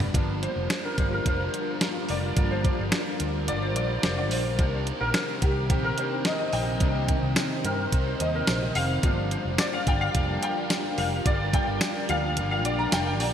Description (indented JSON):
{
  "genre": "1980s-style pop",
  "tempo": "108 BPM",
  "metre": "4/4",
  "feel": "straight",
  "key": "unclear",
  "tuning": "A4 = 444 Hz",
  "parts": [
    { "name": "fuzz guitar", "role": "accompaniment", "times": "0.0-13.3 s", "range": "G2 to C4", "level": "-36 LUFS", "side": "equal", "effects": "distortion, lush chorus, shimmer reverb" },
    { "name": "warm concert grand piano", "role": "accompaniment", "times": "0.0-13.3 s", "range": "G2 to Bb5", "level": "-29 LUFS", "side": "left 1 dB", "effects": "ensemble chorus, shimmer reverb" },
    { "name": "soft string machine", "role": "sustained chords", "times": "0.0-13.3 s", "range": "C3 to C5", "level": "-32 LUFS", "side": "equal", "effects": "ensemble chorus, shimmer reverb" },
    { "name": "mellow fretless electric bass", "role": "bass", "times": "0.0-13.3 s", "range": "F1 to G2", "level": "-30 LUFS", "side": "equal", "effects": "lush chorus" },
    { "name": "clean 12-bit digital drum machine", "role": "drums", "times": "0.0-13.3 s", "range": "hi-hat, kick drum, snare drum, tambourine, toms", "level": "-27 LUFS", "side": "equal", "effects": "gated reverb" }
  ],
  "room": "moderate lush hall reverb, RT60 2.5 s",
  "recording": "bright 1980s-style digital production",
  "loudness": "-23 LUFS",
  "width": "side -9 dB against mid",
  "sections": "0.1-13.3 A section",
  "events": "grand piano solo 0.1-13.3",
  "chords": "0.1 Gm7; 4.6 Cm7; 9.0 Gm7",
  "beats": "| 0.15 0.70 1.26 1.81 | 2.37 2.92 3.48 4.04 | 4.59 5.15 5.70 6.26 | 6.81 7.37 7.92 8.48 | 9.04 9.59 10.15 10.70 | 11.26 11.81 12.37 12.93"
}